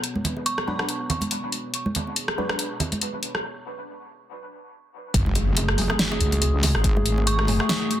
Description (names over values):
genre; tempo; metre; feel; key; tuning
deep dubstep; 141 BPM; 4/4; swing 56% on 16ths, half-time; F# minor; A4 = 441 Hz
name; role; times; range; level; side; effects
dark analog pad; sustained chords; 0.0-8.0 s; A3 to C#5; -31 LUFS; left 1 dB; lush chorus
deep house drum kit; drums; 0.0-8.0 s; hi-hat, rim click, snare drum; -26 LUFS; left 1 dB; soft clipping on snare
congas and bongos; percussion; 0.2-7.8 s; none; -31 LUFS; right 2 dB; dub echo
dark detuned synth bell; melody; 0.5-0.8, 7.3-7.6 s; C#6; -32 LUFS; right 3 dB; chorus, dub echo
filtered dub chord stab; stabs; 0.7-2.6, 5.8-7.7 s; F#3 to B4; -34 LUFS; left 1 dB; phaser, dub echo
wobble bass; bass; 5.1-7.6 s; F#1 to C#2; -22 LUFS; equal; chorus
electronic kick drum; drums; 5.1-6.9 s; none; -22 LUFS; equal; none
impact; sound effects; 5.1-6.8 s; none; -29 LUFS; equal; none
room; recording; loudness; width
moderate spring reverb, RT60 1.6 s, digital ambience; dense, heavily limited modern master; -21 LUFS; side -12 dB against mid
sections
0.0-5.1 A section; 5.1-8.0 B section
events
filter sweep on analog synth pad 0.0-5.1; break 3.4-5.1; drop 5.1-8.0; impact 5.1-6.8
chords
0.0 B5; 5.1 F#madd9